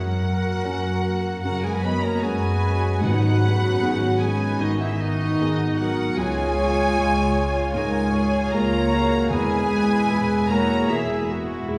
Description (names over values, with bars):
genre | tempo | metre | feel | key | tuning
cinematic, emotional film score for orchestra | 76 BPM | 4/4 | rubato | G# minor | A4 = 440 Hz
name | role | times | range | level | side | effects
dark violin | melody | 0.0-11.3 s | D#5 to B5 | -34 LUFS | equal | none
rich studio violin section | melody | 0.0-11.3 s | D#5 to B5 | -35 LUFS | equal | none
mellow small flute group | second line | 0.0-11.3 s | F#4 to D#5 | -32 LUFS | equal | none
rich studio violin section | second line | 0.0-11.3 s | D#5 to B5 | -36 LUFS | equal | none
warm clarinet | second line | 0.0-11.3 s | D#4 to B4 | -32 LUFS | equal | none
warm grand piano | accompaniment | 0.0-11.8 s | C#2 to E#5 | -33 LUFS | equal | none
dark French horn section | sustained chords | 0.0-11.3 s | D#3 to B3 | -28 LUFS | equal | none
dark studio double bass section | bass | 0.0-11.8 s | E1 to F#2 | -28 LUFS | equal | none
rich studio viola section | accompaniment | 0.2-11.8 s | G#3 to E#5 | -36 LUFS | equal | none
warm studio cello section | bass | 1.4-11.8 s | C#4 to B4 | -33 LUFS | equal | none
timpani | percussion | 3.0-4.2 s | G#2 | -32 LUFS | equal | none
room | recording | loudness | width
wet scoring stage reverb, RT60 2.0 s | heard from further back in the room, small room ambience | -22 LUFS | mono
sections
0.0-11.8 A section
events
none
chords
0.0 F#; 3.0 G#m7; 6.2 C#; 9.3 E